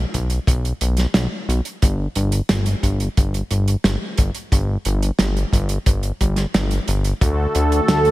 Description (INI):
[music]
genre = synthwave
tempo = 89 BPM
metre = 4/4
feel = straight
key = unclear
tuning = A4 = 440 Hz
[part]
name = fat analog bass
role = bass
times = 0.0-8.1 s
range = G1 to D2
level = -19 LUFS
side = equal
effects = tube saturation
[part]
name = kick drum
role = drums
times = 0.1-7.3 s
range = none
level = -18 LUFS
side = equal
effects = none
[part]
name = warm soul drum kit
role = drums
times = 0.1-8.1 s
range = hi-hat, snare drum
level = -22 LUFS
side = right 2 dB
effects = gated reverb
[part]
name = brassy analog pad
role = sustained chords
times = 7.2-8.1 s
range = D3 to A4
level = -20 LUFS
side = equal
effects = chorus, sidechain pumping
[part]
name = soft supersaw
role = melody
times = 7.9-8.1 s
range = A4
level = -17 LUFS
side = right 2 dB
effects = none
[sound]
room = studio ambience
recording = none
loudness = -17 LUFS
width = side -17 dB against mid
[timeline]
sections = 0.0-8.1 A section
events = none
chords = 0.0 N.C.; 7.2 D